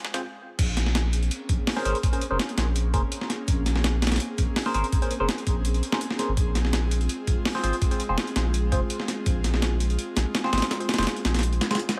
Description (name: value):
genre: drum and bass, jungle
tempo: 166 BPM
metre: 4/4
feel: straight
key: Bb minor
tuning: A4 = 441 Hz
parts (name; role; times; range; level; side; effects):
- airy breathy pad; sustained chords; 0.1-12.0 s; Ab3 to Ab4; -36 LUFS; equal; chorus
- saturated sub bass; bass; 0.0-11.6 s; F1 to Bb1; -28 LUFS; equal; tube saturation, high-pass filter
- breakbeat sampler-style drum kit; drums; 0.0-12.0 s; crash cymbal, hi-hat, kick drum, snare drum; -28 LUFS; equal; high-pass filter on snare, high-pass filter on hats, high-pass filter on cymbals, high-pass filter on kick, high-pass filter on room
- barky tine electric piano; stabs; 0.1-12.0 s; C4 to C5; -33 LUFS; equal; phaser, dub echo
room: light reverb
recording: none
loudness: -25 LUFS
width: mono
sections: 0.6-12.0 A section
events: drum fill 0.0; stop 0.2-0.6; drop 0.6-12.0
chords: 0.0 Fm; 0.6 Bbm9; 6.4 Fm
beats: 0.23 | 0.59 0.95 1.31 1.67 | 2.03 2.40 2.76 3.12 | 3.48 3.84 4.20 4.56 | 4.92 5.29 5.65 6.01 | 6.37 6.73 7.09 7.46 | 7.82 8.18 8.54 8.90 | 9.26 9.62 9.98 10.35 | 10.71 11.07 11.43 11.79